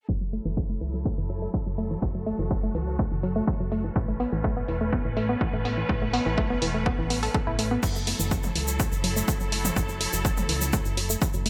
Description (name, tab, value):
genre	melodic techno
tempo	124 BPM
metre	4/4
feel	straight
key	F# minor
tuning	A4 = 440 Hz
part	clear studio string section	sustained chords	0.1-11.5 s	F#3 to B4	-36 LUFS	equal	sidechain pumping
part	woody wave-folded pluck	arpeggios	0.1-11.5 s	E3 to A4	-33 LUFS	equal	chorus, sidechain pumping, delay
part	fat analog bass	bass	0.1-11.5 s	E1 to C#2	-33 LUFS	equal	sidechain pumping
part	electronic kick drum	drums	0.1-11.3 s	none	-30 LUFS	equal	none
part	punchy analog drum machine	drums	0.3-11.5 s	crash cymbal, hi-hat, toms	-33 LUFS	equal	sidechain pumping on hats, sidechain pumping on cymbals, sidechain pumping on toms
part	tube shaker	percussion	7.8-11.4 s	none	-34 LUFS	equal	none
room	moderate lush hall reverb, RT60 1.9 s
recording	bright 1980s-style digital production, low-pass filter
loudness	-27 LUFS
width	mono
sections	0.1-7.8 A section; 7.8-11.5 B section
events	filter sweep on analog synth bass 0.1-7.8; filter sweep on synth pluck 0.1-7.8; filter sweep 0.1-7.8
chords	0.1 F#m7; 4.0 Aadd9; 7.8 F#m7